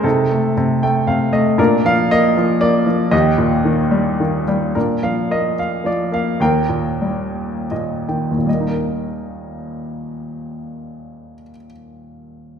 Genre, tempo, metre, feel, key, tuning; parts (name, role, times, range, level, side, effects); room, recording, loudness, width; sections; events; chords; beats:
classical, lyrical solo piano; 70-120 BPM; 3/4; rubato; Eb major; A4 = 439 Hz
clear baby grand piano; solo; 0.0-12.6 s; Eb2 to G5; -16 LUFS; equal
wet recital hall reverb, RT60 1.5 s; recorded in a church or concert hall; -15 LUFS; side -7 dB against mid
0.0-4.8 A section; 4.8-8.5 B section; 8.5-12.6 C section
grand piano fill 0.6-1.6, 7.3-8.5; slowing down 4.8-8.5
0.0 Cm6; 1.6 Bb; 3.1 Eb; 4.8 Bb; 6.4 Eb
| 0.04 0.57 1.08 | 1.59 2.11 2.62 | 3.13 3.65 4.20 | 4.76 5.30 5.84 | 6.40 7.00 7.69 | 8.48 9.31 10.11 | 10.88 11.65 12.43